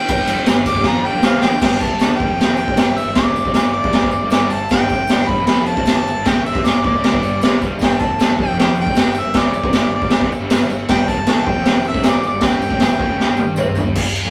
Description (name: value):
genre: garage rock duo or trio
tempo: 156 BPM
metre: 4/4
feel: straight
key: unclear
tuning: A4 = 441 Hz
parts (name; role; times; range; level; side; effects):
- clear harmonica; melody; 0.0-13.6 s; D5 to D6; -23 LUFS; equal; overdrive
- raw garage drum kit; drums; 0.1-14.2 s; crash cymbal, kick drum, ride cymbal, snare drum, toms; -18 LUFS; equal; none
- crunchy overdriven guitar; riff; 0.2-14.3 s; F2 to F4; -26 LUFS; equal; none
- fuzz fingered electric bass; bass; 0.2-14.3 s; F1 to F2; -31 LUFS; equal; overdrive
- tambourine; percussion; 0.2-13.8 s; none; -45 LUFS; equal; none
room: light reverb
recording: rough rehearsal-room recording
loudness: -16 LUFS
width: mono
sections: 0.0-1.6 A section; 1.6-14.0 B section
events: harmonica solo 0.0-1.6; drum fill 0.9-1.6, 13.2-14.0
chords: 0.0 G5